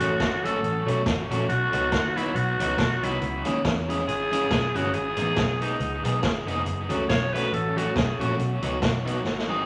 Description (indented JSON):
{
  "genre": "ska",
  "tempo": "139 BPM",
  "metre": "4/4",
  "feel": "swing 56% on 8ths",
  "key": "unclear",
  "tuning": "A4 = 440 Hz",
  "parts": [
    { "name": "breathy alto saxophone", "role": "melody", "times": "0.0-8.4 s", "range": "D#4 to C#5", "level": "-30 LUFS", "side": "equal", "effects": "none" },
    { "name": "electric guitar at the edge of break-up", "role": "accompaniment", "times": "0.0-9.6 s", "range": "F#3 to G#4", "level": "-30 LUFS", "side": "equal", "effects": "spring reverb, dub echo" },
    { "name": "fingered electric bass", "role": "bass", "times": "0.0-9.6 s", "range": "E#1 to E2", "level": "-32 LUFS", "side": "equal", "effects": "none" },
    { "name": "street-band drum kit", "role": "drums", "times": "0.0-9.5 s", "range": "hi-hat, kick drum, snare drum", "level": "-31 LUFS", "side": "equal", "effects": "dub echo" }
  ],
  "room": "wet large studio reverb, RT60 0.8 s",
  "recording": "none",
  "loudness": "-25 LUFS",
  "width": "mono",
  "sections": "0.0-9.7 A section",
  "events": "alto saxophone solo 0.0-9.7; drum fill 9.2-9.7",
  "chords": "0.0 F#m; 1.5 B; 3.2 C#m; 4.9 G#m; 6.7 F#m; 8.4 B",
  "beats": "0.20 0.63 1.06 | 1.49 1.92 2.35 2.79 | 3.22 3.65 4.08 4.51 | 4.94 5.37 5.80 6.23 | 6.66 7.09 7.52 7.96 | 8.39 8.82 9.25"
}